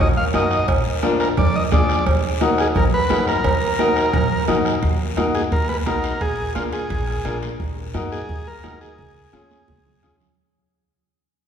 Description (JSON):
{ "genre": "latin, cumbia", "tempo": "174 BPM", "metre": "4/4", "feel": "straight", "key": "Eb minor", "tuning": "A4 = 441 Hz", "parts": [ { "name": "combo organ", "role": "melody", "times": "0.0-10.2 s", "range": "F4 to F5", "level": "-24 LUFS", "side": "equal", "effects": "none" }, { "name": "upright bass", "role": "bass", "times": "0.0-10.3 s", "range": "Bb1 to Gb2", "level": "-25 LUFS", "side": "left 1 dB", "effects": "none" }, { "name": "bright upright piano", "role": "accompaniment", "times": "0.3-10.3 s", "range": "Db4 to Bb4", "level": "-23 LUFS", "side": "left 3 dB", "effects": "none" }, { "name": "bombo", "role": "percussion", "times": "0.3-10.2 s", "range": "none", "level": "-24 LUFS", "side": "right 1 dB", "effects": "none" }, { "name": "congas", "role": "percussion", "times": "0.3-10.3 s", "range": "none", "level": "-27 LUFS", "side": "right 5 dB", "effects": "none" }, { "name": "guiro", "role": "percussion", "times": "0.3-10.4 s", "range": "none", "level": "-36 LUFS", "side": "left 6 dB", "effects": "none" }, { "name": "cowbell and timbales", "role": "percussion", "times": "0.7-7.6 s", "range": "none", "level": "-31 LUFS", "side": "right 4 dB", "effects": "none" } ], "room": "wet church reverb, RT60 2.8 s", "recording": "recorded in a church or concert hall", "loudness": "-17 LUFS", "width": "side -8 dB against mid", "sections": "0.0-4.8 A section; 4.8-10.4 B section", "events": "fade-out 4.8-10.4; drum fill 9.5-10.4", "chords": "0.0 Ebm; 0.7 Bb7; 2.1 Ebm; 6.2 Bb7; 7.6 Ebm; 9.0 Db" }